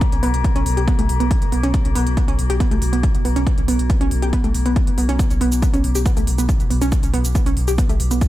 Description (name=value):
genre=driving peak-time techno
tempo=139 BPM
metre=4/4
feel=straight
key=unclear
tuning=A4 = 440 Hz
part: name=metallic inharmonic drone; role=drone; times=0.0-8.3 s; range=B2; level=-26 LUFS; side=left 2 dB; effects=chorus, built-in reverb, sidechain pumping
part: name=electronic hi-hat and shaker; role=drums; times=0.0-8.3 s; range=none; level=-31 LUFS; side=right 2 dB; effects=overdrive, sidechain pumping on hats, studio reverb, sidechain pumping on toms, sidechain pumping on cymbals, sidechain pumping on perc
part: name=electronic kick drum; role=drums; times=0.0-8.3 s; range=none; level=-18 LUFS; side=equal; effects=overdrive, studio reverb
part: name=saturated sub bass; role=bass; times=0.1-8.2 s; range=B1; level=-20 LUFS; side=equal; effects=tube saturation, sidechain pumping, low-pass filter
part: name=warbly dusty pluck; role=riff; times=0.2-8.2 s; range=A3 to G4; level=-23 LUFS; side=right 2 dB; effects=chorus, tube saturation, sidechain pumping, digital delay
room=digital ambience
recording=none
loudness=-16 LUFS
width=side -15 dB against mid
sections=0.0-8.3 A section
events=none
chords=none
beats=| 0.01 0.45 0.88 1.31 | 1.74 2.17 2.60 3.04 | 3.47 3.90 4.33 4.76 | 5.19 5.62 6.06 6.49 | 6.92 7.35 7.78 8.21